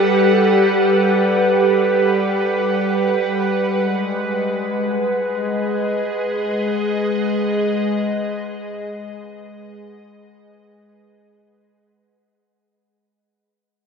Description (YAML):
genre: ambient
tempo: free time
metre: none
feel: none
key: unclear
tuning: A4 = 440 Hz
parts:
  - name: evolving wavetable pad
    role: solo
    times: 0.0-12.7 s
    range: G3 to F#5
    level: -17 LUFS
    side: equal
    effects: chorus, built-in reverb, diffuse ambient delay
room: wet huge ambient reverb, RT60 7.6 s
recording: none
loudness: -16 LUFS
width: side -6 dB against mid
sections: 0.0-12.7 A section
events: fade-out 0.7-12.7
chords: 0.0 Gmaj7; 3.6 G#m7